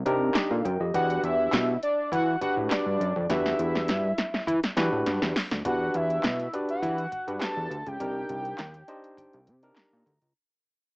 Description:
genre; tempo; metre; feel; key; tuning
early-eighties boogie funk; 102 BPM; 4/4; straight; E minor; A4 = 441 Hz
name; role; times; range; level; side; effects
fat analog bass; bass; 0.0-10.3 s; C2 to E3; -29 LUFS; equal; none
barky tine electric piano; accompaniment; 0.1-10.3 s; D4 to Bb5; -29 LUFS; equal; overdrive
electro analog drum machine; drums; 0.1-10.3 s; handclaps, hi-hat, kick drum, snare drum; -29 LUFS; equal; none
fat analog lead; melody; 0.9-9.8 s; D5 to A5; -29 LUFS; equal; cassette tape
room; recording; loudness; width
moderate studio reverb, RT60 0.7 s; home recording on cassette, small speaker sound; -24 LUFS; side -36 dB against mid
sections
0.0-5.6 A section; 5.6-10.4 B section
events
drum fill 3.3-5.6; fade-out 5.6-10.4; tine electric piano fill 8.6-10.4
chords
0.0 Cm9; 0.9 Em9; 8.0 Cm9

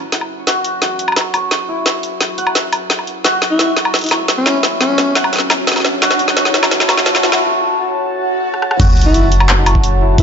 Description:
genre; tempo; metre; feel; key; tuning
half-time drum and bass; 173 BPM; 4/4; half-time; F# minor; A4 = 440 Hz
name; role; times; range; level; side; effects
dark analog pad; sustained chords; 0.1-10.2 s; F#4 to A5; -23 LUFS; equal; chorus, phaser, vintage 12-bit sampler grit, sidechain pumping
santur; arpeggios; 0.0-10.2 s; E4 to F#5; -20 LUFS; right 1 dB; vintage 12-bit sampler grit, low-pass filter, digital delay
long sustained 808-style bass; bass; 0.0-10.2 s; F#1 to F#2; -13 LUFS; equal; high-pass filter
drum and bass drum kit; drums; 0.1-10.2 s; crash cymbal, handclaps, hi-hat, rim click, snare drum, woodblock; -15 LUFS; equal; overdrive, high-pass filter on snare, high-pass filter on hats, high-pass filter on perc, high-pass filter on cymbals
riser, swell and sub drop; sound effects; 4.8-10.2 s; none; -22 LUFS; equal; none
growling alto saxophone; melody; 3.5-5.2, 9.1-10.2 s; C#4 to E4; -18 LUFS; left 1 dB; vintage 12-bit sampler grit, digital delay
electronic kick drum; drums; 8.8-10.2 s; none; -13 LUFS; equal; overdrive
room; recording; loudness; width
moderate echo chamber reverb, RT60 2.0 s; high-pass filter, nothing above 7.6 kHz; -12 LUFS; side -7 dB against mid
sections
0.0-8.8 A section; 8.8-10.2 B section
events
build-up 0.0-8.8; drum fill 0.0-7.4, 8.5; filter sweep on analog synth pad 0.0-8.8; filter sweep on santur 0.0-8.8; riser 4.8-7.4; break 7.4-8.8; swell 8.2-8.8; drop 8.8-10.2; impact 8.8-10.2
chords
0.0 F#m

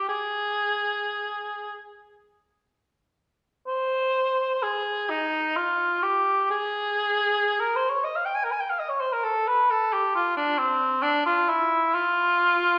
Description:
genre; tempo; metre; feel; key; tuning
classical, free, expressive piece for unaccompanied cor anglais; 27-46 BPM (dotted quarters); 6/8; rubato; Ab major; A4 = 440 Hz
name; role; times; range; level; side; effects
mellow cor anglais; solo; 0.0-12.8 s; C4 to Ab5; -25 LUFS; equal; none
room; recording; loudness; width
wet recital hall reverb, RT60 1.3 s; none; -25 LUFS; mono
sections
0.0-3.7 A section; 3.7-12.8 A section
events
none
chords
none

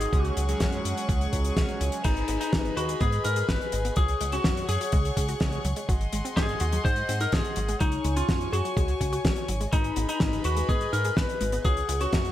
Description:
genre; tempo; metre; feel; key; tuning
italo disco; 125 BPM; 4/4; straight; G# minor; A4 = 442 Hz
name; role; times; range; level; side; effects
lightly driven lead guitar; melody; 0.0-12.3 s; D#4 to B#4; -30 LUFS; left 2 dB; digital delay
warm studio string section; sustained chords; 0.0-12.3 s; G#4 to C#6; -35 LUFS; left 1 dB; none
chorused polysynth; stabs; 0.0-2.0 s; F#3 to G#4; -32 LUFS; right 3 dB; digital delay
chorused synth bass; bass; 0.0-12.3 s; G#1 to G#2; -29 LUFS; equal; tube saturation
damped 70s drum kit; drums; 0.0-12.3 s; crash cymbal, hi-hat, snare drum; -31 LUFS; left 1 dB; studio reverb, gated reverb
electronic kick drum; drums; 0.1-12.2 s; none; -27 LUFS; equal; studio reverb
wide unison pluck; arpeggios; 2.0-12.2 s; F#3 to B4; -37 LUFS; left 1 dB; digital delay
room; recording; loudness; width
light reverb, small room ambience; none; -24 LUFS; side -12 dB against mid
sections
0.0-12.3 A section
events
none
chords
0.1 C#sus4; 2.0 G#m; 4.0 C#sus4; 5.9 G#7; 7.8 C#sus4; 9.7 G#m; 11.6 C#sus4

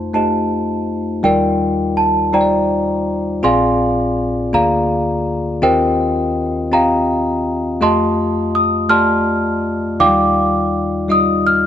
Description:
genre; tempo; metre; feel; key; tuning
gospel; 55 BPM (dotted quarters); 6/8; straight; unclear; A4 = 440 Hz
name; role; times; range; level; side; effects
celesta; melody; 0.0-11.7 s; Bb4 to F6; -16 LUFS; equal; slapback echo
bell-like tine electric piano; accompaniment; 0.0-11.7 s; Bb1 to Eb5; -17 LUFS; left 1 dB; none
room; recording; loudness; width
moderate plate reverb, RT60 3.1 s; nothing above 10.6 kHz; -14 LUFS; side -10 dB against mid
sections
0.0-1.2 A section; 1.2-11.7 B section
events
none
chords
0.0 F7; 1.2 Ebmaj9; 3.4 Bb9; 4.5 Bb7/D; 5.6 Eb69; 7.8 F9; 10.0 Ebmaj9

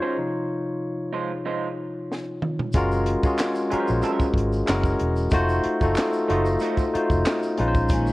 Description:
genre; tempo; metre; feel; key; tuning
R&B, neo-soul; 93 BPM; 4/4; swing 55% on 16ths; unclear; A4 = 440 Hz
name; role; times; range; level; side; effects
electric guitar through a small old amp; second line; 0.0-6.8 s; Gb3 to C5; -31 LUFS; right 5 dB; spring reverb
barky tine electric piano; accompaniment; 0.0-8.1 s; C3 to F5; -24 LUFS; left 1 dB; none
compact cocktail drum kit; drums; 2.1-8.1 s; handclaps, hi-hat, kick drum, snare drum, toms; -25 LUFS; equal; none
vintage muted fingered electric bass; bass; 2.7-8.1 s; Fb1 to Bb1; -25 LUFS; equal; none
tube shaker and finger snaps; percussion; 2.7-8.1 s; none; -38 LUFS; right 2 dB; none
warm studio string section; sustained chords; 7.9-8.1 s; Bb2 to Db4; -28 LUFS; equal; none
room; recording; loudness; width
light reverb, studio reverb; worn, warbling old tape, cassette tape, warbly pitch drift; -21 LUFS; side -19 dB against mid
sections
0.0-2.7 A section; 2.7-8.1 B section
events
tine electric piano solo 0.0-2.7; break 0.2-2.7; drum fill 2.1-2.7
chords
0.2 Dbmaj9; 2.7 Gbmaj7; 4.7 Gb9; 5.3 F7b9; 7.6 Bbm11

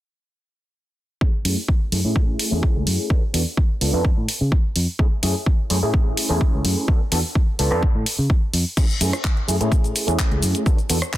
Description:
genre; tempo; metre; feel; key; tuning
filtered disco house; 127 BPM; 4/4; straight; F# minor; A4 = 439 Hz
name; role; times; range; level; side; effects
overdriven reed electric piano; accompaniment; 1.2-11.0 s; A3 to A4; -25 LUFS; equal; phaser, sidechain pumping, low-pass filter
electronic kick drum; drums; 1.2-11.2 s; none; -18 LUFS; equal; none
fingered electric bass; bass; 1.4-11.0 s; C#2 to C#3; -22 LUFS; equal; tube saturation, sidechain pumping, low-pass filter
house drum kit; drums; 1.5-11.2 s; cabasa, crash cymbal, handclaps, hi-hat, rim click; -24 LUFS; equal; sidechain pumping on hats, sidechain pumping on cymbals, sidechain pumping on perc
room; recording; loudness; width
little or no reverb; dense, heavily limited modern master; -18 LUFS; side -15 dB against mid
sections
1.2-8.8 A section; 8.8-11.2 B section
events
filter sweep 1.2-8.8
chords
1.2 F#m9; 3.1 E9sus4; 3.8 C#7b9b13; 5.0 F#m9; 6.9 E9sus4; 7.6 C#7b9b13; 8.8 F#m9; 10.7 E9sus4

